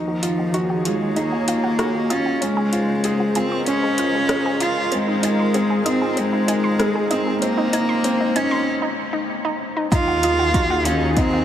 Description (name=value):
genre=piano and strings electronica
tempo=96 BPM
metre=4/4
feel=straight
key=Eb dorian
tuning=A4 = 439 Hz
part: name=warm cello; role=melody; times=0.0-11.4 s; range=F3 to F4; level=-20 LUFS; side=equal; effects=none
part: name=lush unison pad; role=sustained chords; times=0.1-11.4 s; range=Eb4 to Eb5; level=-29 LUFS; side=equal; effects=chorus, phaser, sidechain pumping
part: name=felt-muted upright piano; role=riff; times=0.0-11.4 s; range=C4 to Ab4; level=-24 LUFS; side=equal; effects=tape echo
part: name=rich symphonic double bass section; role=bass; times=0.0-11.4 s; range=Gb1 to Eb2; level=-30 LUFS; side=equal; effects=sidechain pumping, high-pass filter
part: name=analog pluck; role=arpeggios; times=0.1-11.4 s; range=C4 to Db6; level=-28 LUFS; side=right 2 dB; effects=chorus, sidechain pumping, tape echo
part: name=deep house drum kit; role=drums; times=0.2-11.3 s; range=hi-hat, rim click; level=-28 LUFS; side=equal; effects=overdrive
part: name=electronic kick drum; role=drums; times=9.9-11.3 s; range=none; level=-20 LUFS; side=equal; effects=overdrive
room=moderate huge ambient reverb, RT60 8.2 s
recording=none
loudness=-18 LUFS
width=side -10 dB against mid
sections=0.0-9.9 A section; 9.9-11.4 B section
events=build-up 0.0-9.9; filter sweep on synth arpeggio sound 0.0-9.9; break 8.7-9.9; drop 9.9-11.4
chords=0.0 Ebmadd9; 2.4 Db; 4.9 Ab; 7.4 Gb; 9.9 Ebmadd9